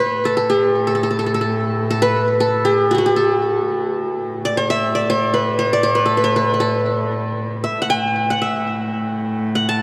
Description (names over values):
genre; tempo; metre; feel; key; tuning
Arabic maqam ensemble; 118 BPM; 4/4; straight; A maqam rast; A4 = 440 Hz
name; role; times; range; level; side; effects
qanun; melody; 0.0-9.8 s; F#4 to A5; -19 LUFS; equal; tape echo
rich cello; drone; 0.0-9.8 s; A2; -26 LUFS; equal; none
room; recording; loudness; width
wet cathedral reverb, RT60 7.2 s; dreamy mix soaked in reverb; -18 LUFS; mono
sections
0.0-9.8 A section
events
none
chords
none